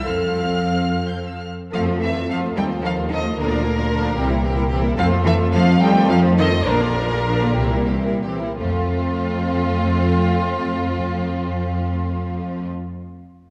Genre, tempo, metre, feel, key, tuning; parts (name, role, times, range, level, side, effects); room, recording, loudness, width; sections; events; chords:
quick classical-period movement for string orchestra; 59-75 BPM (dotted quarters); 6/8; straight; F major; A4 = 445 Hz
dark symphonic violin section; melody; 0.0-12.7 s; F4 to G6; -28 LUFS; equal
clear symphonic violin section; second line; 0.0-12.7 s; C4 to F5; -29 LUFS; equal
clear symphonic viola section; accompaniment; 0.0-12.7 s; D3 to A4; -28 LUFS; equal
clear symphonic cello section; bass; 0.0-12.7 s; Bb2 to G3; -26 LUFS; equal
clear symphonic double bass section; bass; 0.0-12.7 s; Bb1 to F2; -25 LUFS; equal
wet concert hall reverb, RT60 1.8 s; dark, warm production; -20 LUFS; mono
0.0-1.7 A section; 1.7-8.6 B section; 8.6-12.5 C section
slowing down 4.2-8.6
0.0 F; 2.6 F7/Eb; 3.4 Bb/D; 4.2 C7; 5.0 F; 5.8 F7; 6.7 Bb; 7.6 C7; 8.6 F